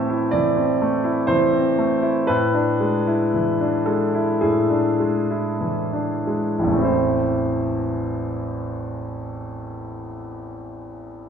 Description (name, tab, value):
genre	classical, romantic character piece for solo piano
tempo	45-63 BPM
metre	4/4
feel	rubato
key	A minor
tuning	A4 = 443 Hz
part	bright concert grand piano	solo	0.0-11.3 s	A1 to E5	-19 LUFS	equal	none
room	moderate recital hall reverb, RT60 1.6 s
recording	minimal, uncompressed stereo recording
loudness	-18 LUFS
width	side -7 dB against mid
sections	0.0-6.9 A section; 6.9-11.3 B section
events	slowing down 0.0-6.9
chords	0.0 Am; 2.3 E7/A; 6.9 Am